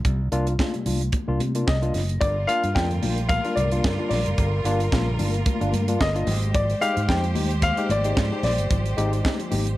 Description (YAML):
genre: disco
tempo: 111 BPM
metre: 4/4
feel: swing 56% on 16ths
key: unclear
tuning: A4 = 440 Hz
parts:
  - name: barky tine electric piano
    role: accompaniment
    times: 0.0-9.7 s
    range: G2 to G4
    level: -29 LUFS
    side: left 2 dB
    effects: none
  - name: fingered electric bass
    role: bass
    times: 0.0-9.7 s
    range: Gb1 to C3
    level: -24 LUFS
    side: equal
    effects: none
  - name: tight funk drum kit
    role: drums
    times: 0.0-9.8 s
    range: hi-hat, kick drum, snare drum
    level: -26 LUFS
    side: right 1 dB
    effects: none
  - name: congas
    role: percussion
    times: 0.1-9.7 s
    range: none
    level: -33 LUFS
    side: left 4 dB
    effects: none
  - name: dark baby grand piano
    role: melody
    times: 1.7-9.8 s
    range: D5 to G5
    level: -27 LUFS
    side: left 2 dB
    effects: none
  - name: clear studio string section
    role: second line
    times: 2.2-9.8 s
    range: G3 to C5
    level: -31 LUFS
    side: right 1 dB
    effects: none
room: studio reverb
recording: dark, warm production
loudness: -20 LUFS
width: side -16 dB against mid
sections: 0.0-2.2 A section; 2.2-9.8 B section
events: none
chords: 0.1 C7sus4; 6.3 Fm9/Ab